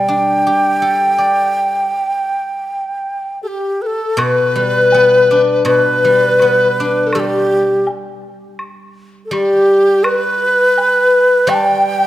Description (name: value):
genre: chinese traditional, Chinese chamber ensemble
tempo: 82 BPM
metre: 4/4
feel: rubato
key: G gong mode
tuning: A4 = 442 Hz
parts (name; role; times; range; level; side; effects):
- breathy xiao; melody; 0.0-12.1 s; G4 to G5; -14 LUFS; right 1 dB; none
- guzheng; accompaniment; 0.0-12.1 s; B2 to D5; -21 LUFS; right 1 dB; none
- mellow hollow large dizi; second line; 3.4-12.1 s; G4 to A5; -15 LUFS; left 3 dB; none
- woodblock; percussion; 4.2-11.7 s; none; -25 LUFS; equal; none
room: moderate concert hall reverb, RT60 2.0 s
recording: none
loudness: -11 LUFS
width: side -14 dB against mid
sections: 0.0-4.2 A section; 4.2-12.1 B section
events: none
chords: none